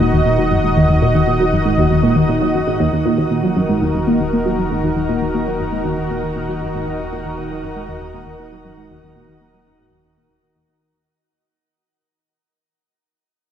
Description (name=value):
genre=ambient, sequencer-driven space music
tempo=118 BPM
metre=4/4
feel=straight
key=Eb minor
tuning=A4 = 444 Hz
part: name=lush unison pad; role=sustained chords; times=0.0-11.0 s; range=Eb3 to Eb5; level=-19 LUFS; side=right 1 dB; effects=chorus
part: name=tight sequenced synth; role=riff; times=0.0-11.1 s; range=Eb2 to Gb3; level=-17 LUFS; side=equal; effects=chorus, phaser, tape echo
part: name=warm sub bass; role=bass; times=0.0-11.0 s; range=Eb1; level=-29 LUFS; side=equal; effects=tube saturation
room=moderate shimmer reverb, RT60 8.0 s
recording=dark, warm production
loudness=-15 LUFS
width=side -9 dB against mid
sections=0.0-2.9 A section; 2.9-11.1 B section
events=filter sweep on synth arpeggio sound 0.0-2.9; fade-out on synth arpeggio sound 2.9-11.1; fade-out on sub bass 2.9-11.1; fade-out 2.9-11.1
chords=0.0 Ebm